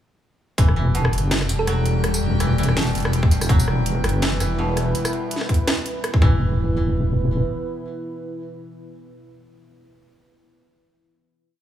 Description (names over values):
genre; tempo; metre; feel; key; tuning
half-time drum and bass; 165 BPM; 4/4; swing 55% on 16ths, half-time; E minor; A4 = 442 Hz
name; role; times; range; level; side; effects
koto; arpeggios; 0.6-9.6 s; B2 to F#3; -29 LUFS; equal; digital delay
deep soft wobble bass; bass; 0.6-7.5 s; E1 to F#1; -20 LUFS; equal; chorus
drum and bass drum kit; drums; 0.6-6.1 s; hi-hat, rim click, snare drum, tambourine; -26 LUFS; right 1 dB; overdrive
electronic kick drum; drums; 0.6-0.7, 3.2-6.3 s; none; -16 LUFS; equal; overdrive
metallic inharmonic drone; texture; 0.9-5.0 s; G3 to G5; -30 LUFS; left 3 dB; chorus, built-in reverb
thumb-piano-like synth pluck; melody; 1.6-2.1 s; A4; -31 LUFS; right 4 dB; chorus, digital delay
dark analog pad; sustained chords; 3.5-9.9 s; B3 to B4; -29 LUFS; right 1 dB; chorus, sidechain pumping
room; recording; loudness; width
digital ambience; small room reverb; -18 LUFS; side -11 dB against mid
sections
0.6-6.4 drop; 6.4-9.3 final hit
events
drop 0.6-6.4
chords
0.6 E5